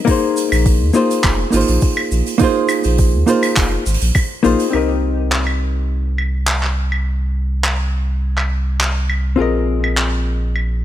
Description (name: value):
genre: sunset chillout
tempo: 103 BPM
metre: 4/4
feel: straight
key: C minor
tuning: A4 = 441 Hz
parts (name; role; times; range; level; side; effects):
- hollow-body jazz guitar; accompaniment; 0.0-10.8 s; Bb3 to Eb5; -17 LUFS; moving between left 6 dB and right 5 dB; auto-pan, low-pass filter, tape echo
- electronic kick drum; drums; 0.1-4.3 s; none; -16 LUFS; equal; none
- soft brush drum kit; drums; 0.1-10.7 s; claves, handclaps, hi-hat, shaker; -21 LUFS; right 1 dB; none
- warm sub bass; bass; 0.5-10.8 s; F1 to Eb2; -18 LUFS; equal; none
room: small room ambience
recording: none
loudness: -14 LUFS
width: side -12 dB against mid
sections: 0.0-4.7 A section; 4.7-10.8 B section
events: none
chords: 0.1 Bb9sus4; 4.7 Cm7; 9.4 Bb9sus4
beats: | 0.07 0.66 1.24 1.82 | 2.40 2.99 3.57 4.15 | 4.74 5.32 5.90 6.48 | 7.07 7.65 8.23 8.81 | 9.39 9.98 10.56